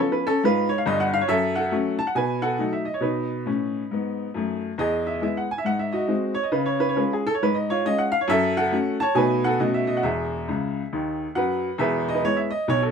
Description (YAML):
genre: jazz, stride piano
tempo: 137 BPM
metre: 4/4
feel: swing 62% on 8ths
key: E major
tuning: A4 = 440 Hz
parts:
  - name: clear upright piano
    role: solo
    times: 0.0-12.9 s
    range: E1 to A5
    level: -21 LUFS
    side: equal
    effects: none
room: moderate club reverb, RT60 0.7 s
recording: dark, warm production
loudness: -21 LUFS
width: side -6 dB against mid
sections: 0.0-11.8 A section; 11.8-12.9 B section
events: upright piano fill 10.5-11.8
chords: 0.0 C#7; 1.3 F#m; 2.2 B7; 3.0 B; 4.8 E; 5.7 G#7; 6.5 C#; 8.3 F#m; 9.2 B7; 9.6 Bsus2; 10.0 E